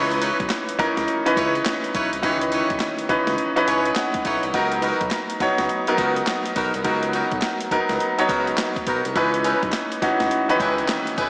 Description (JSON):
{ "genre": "R&B, new jack swing", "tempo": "104 BPM", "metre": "4/4", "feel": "swing 63% on 16ths", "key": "C# dorian", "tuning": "A4 = 444 Hz", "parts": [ { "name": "bright concert grand piano", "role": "accompaniment", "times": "0.0-11.3 s", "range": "D#3 to G#5", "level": "-21 LUFS", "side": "equal", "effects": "shimmer reverb" }, { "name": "warm horn section", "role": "stabs", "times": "0.0-11.3 s", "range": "B3 to C#5", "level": "-25 LUFS", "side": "equal", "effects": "digital delay, shimmer reverb" }, { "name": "smooth gliding synth bass", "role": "bass", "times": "0.0-11.3 s", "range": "B1 to C#2", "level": "-31 LUFS", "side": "equal", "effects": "none" }, { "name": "boom bap sampler-style drum kit", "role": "drums", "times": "0.1-11.3 s", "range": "handclaps, hi-hat, kick drum, snare drum", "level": "-28 LUFS", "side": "equal", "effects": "none" } ], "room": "wet lush hall reverb, RT60 1.8 s, digital ambience", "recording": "big arena sound, small speaker sound", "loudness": "-19 LUFS", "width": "side -34 dB against mid", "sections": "0.0-11.3 A section", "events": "grand piano fill 3.4-4.5", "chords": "0.0 C#m9; 4.5 Bmaj7; 9.2 C#m9", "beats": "0.51 1.08 1.66 | 2.24 2.81 3.39 3.97 | 4.54 5.12 5.70 6.27 | 6.85 7.43 8.01 8.58 | 9.16 9.74 10.31 10.89" }